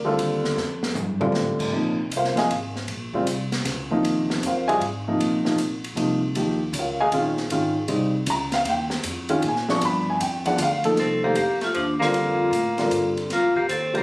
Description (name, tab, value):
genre	modal jazz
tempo	156 BPM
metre	3/4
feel	swing 66% on 8ths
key	Bb dorian, C dorian from 11.0 s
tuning	A4 = 440 Hz
part	dark upright piano	accompaniment	0.0-14.0 s	C3 to Db6	-22 LUFS	equal	none
part	upright bass	bass	0.0-14.0 s	Ab1 to Bb2	-31 LUFS	equal	none
part	open jazz drum kit	drums	0.2-14.0 s	crash cymbal, hi-hat, kick drum, ride cymbal, snare drum, toms	-30 LUFS	equal	none
part	vibraphone with medium hard mallets	melody	11.0-14.0 s	D4 to A4	-23 LUFS	left 1 dB	none
part	bright tenor saxophone	second line	11.0-14.0 s	F3 to C4	-25 LUFS	equal	none
room	moderate club reverb, RT60 0.5 s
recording	recorded on a phone in the room, studio reverb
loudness	-21 LUFS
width	side -24 dB against mid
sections	0.0-1.7 A section; 1.7-11.0 A section; 11.0-14.0 B section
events	drum fill 0.6-1.3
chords	0.0 Csus4; 1.7 Bb9sus4; 6.3 Eb9sus4; 9.8 G7b9; 11.0 C9sus4